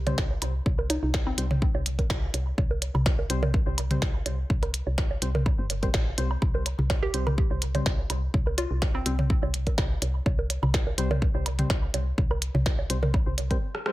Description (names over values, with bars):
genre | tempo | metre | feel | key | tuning
minimal techno | 125 BPM | 4/4 | swing 53% on 16ths | unclear | A4 = 438 Hz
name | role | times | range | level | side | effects
woody FM bass | bass | 0.0-13.6 s | G1 to C2 | -28 LUFS | equal | sidechain pumping
percussive organ stab | stabs | 0.1-13.6 s | G3 to C5 | -36 LUFS | left 3 dB | chorus, analog delay
minimal click drum kit | drums | 0.1-13.9 s | hi-hat, rim click, snare drum | -31 LUFS | equal | overdrive
electronic toms, bongos and woodblock | percussion | 0.1-13.6 s | none | -31 LUFS | right 1 dB | analog delay
electronic kick drum | drums | 0.2-13.6 s | none | -26 LUFS | equal | none
hollow square pluck | melody | 0.9-1.7, 7.0-9.1 s | C4 to G4 | -34 LUFS | equal | chorus, analog delay
room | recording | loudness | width
little or no reverb | echo-heavy mix | -24 LUFS | side -17 dB against mid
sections
0.0-13.9 A section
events
break 13.6-13.9; drum fill 13.7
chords
0.0 C5